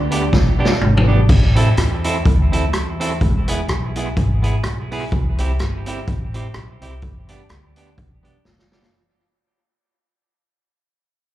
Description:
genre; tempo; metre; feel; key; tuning
ska; 126 BPM; 4/4; swing 56% on 8ths; A minor; A4 = 439 Hz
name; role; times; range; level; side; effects
upright bass; bass; 0.0-8.9 s; E1 to E2; -20 LUFS; equal; none
semi-hollow electric guitar; accompaniment; 0.1-8.8 s; B3 to A4; -25 LUFS; right 4 dB; spring reverb, dub echo, slapback echo
street-band drum kit; drums; 0.1-8.9 s; crash cymbal, hi-hat, kick drum, rim click, snare drum, toms; -18 LUFS; equal; none
room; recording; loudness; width
little or no reverb; live gig heard through the venue's PA, club reverb; -15 LUFS; side -14 dB against mid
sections
0.0-1.3 A section; 1.3-8.9 B section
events
drum fill 0.3-1.3, 8.5-8.9; fade-out 1.3-8.9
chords
0.0 G; 1.3 Am; 3.2 E; 5.1 C; 7.0 G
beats
0.33 0.81 | 1.29 1.77 2.25 2.72 | 3.20 3.68 4.16 4.64 | 5.11 5.59 6.07 6.55 | 7.02 7.50 7.98 8.45

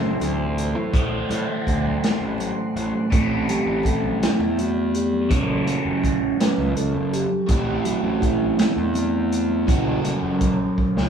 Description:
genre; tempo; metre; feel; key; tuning
psychedelic rock; 55 BPM (dotted quarters); 6/8; straight; A dorian; A4 = 440 Hz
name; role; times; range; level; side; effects
mellow tonewheel organ; sustained chords; 0.0-10.2 s; E3 to C6; -27 LUFS; right 3 dB; slow rotary speaker
crunchy overdriven guitar; riff; 0.0-11.1 s; A2 to A4; -24 LUFS; right 1 dB; phaser
fuzz picked electric bass; bass; 0.0-11.1 s; F#1 to A2; -26 LUFS; equal; overdrive
vintage drum kit; drums; 0.2-11.1 s; hi-hat, kick drum, snare drum; -23 LUFS; equal; none
congas; percussion; 0.2-10.9 s; none; -34 LUFS; left 2 dB; none
room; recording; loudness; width
moderate small room reverb, RT60 0.6 s; band playing live in one room, studio reverb; -19 LUFS; side -7 dB against mid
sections
0.0-3.1 A section; 3.1-11.1 B section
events
tonewheel organ solo 3.1-11.1; drum fill 10.8-11.1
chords
0.0 Am; 5.3 F#m7; 7.5 Am; 9.7 F#m7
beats
| 0.93 2.02 | 3.12 4.21 | 5.31 6.40 | 7.50 8.59 | 9.69 10.78

